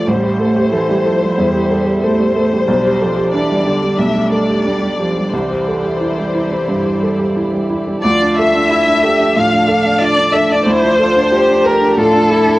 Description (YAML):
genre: neoclassical piano and strings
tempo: 92 BPM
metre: 4/4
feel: rubato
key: D minor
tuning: A4 = 440 Hz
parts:
  - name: muted chamber violin section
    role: melody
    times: 0.0-12.6 s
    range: A4 to F5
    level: -15 LUFS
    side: left 2 dB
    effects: cassette tape
  - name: muted cello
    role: second line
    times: 0.0-12.6 s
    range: D3 to G4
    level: -19 LUFS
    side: right 1 dB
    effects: cassette tape
  - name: felt-muted upright piano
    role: accompaniment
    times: 0.0-12.6 s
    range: A1 to A4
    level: -16 LUFS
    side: right 1 dB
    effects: cassette tape
  - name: muted chamber string section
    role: sustained chords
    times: 0.0-12.6 s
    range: F3 to A5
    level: -26 LUFS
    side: equal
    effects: cassette tape
room: moderate spring reverb, RT60 2.0 s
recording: home recording on cassette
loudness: -12 LUFS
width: side -18 dB against mid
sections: 0.0-8.0 A section; 8.0-12.6 B section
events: none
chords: 0.1 Am7; 2.7 G/B; 5.3 Cadd9; 8.0 Dmadd9